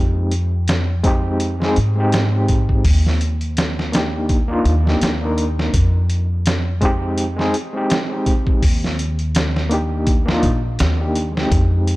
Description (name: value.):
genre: trip hop.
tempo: 83 BPM.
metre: 4/4.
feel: swing 56% on 16ths.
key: F dorian.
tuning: A4 = 440 Hz.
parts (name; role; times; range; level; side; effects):
overdriven reed electric piano; accompaniment; 0.0-12.0 s; Ab3 to Bb4; -21 LUFS; equal; fast tremolo, tape echo.
upright bass; bass; 0.0-12.0 s; Bb1 to Ab2; -19 LUFS; equal; none.
trip hop sampler-style drum kit; drums; 0.3-12.0 s; hi-hat, kick drum, snare drum; -19 LUFS; equal; none.
room: little or no reverb.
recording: dark, warm production.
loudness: -16 LUFS.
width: side -19 dB against mid.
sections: 0.0-12.0 A section.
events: none.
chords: 0.0 Fm7; 2.9 Ebmaj7; 5.7 Fm7; 8.6 Cm7/Eb (rootless).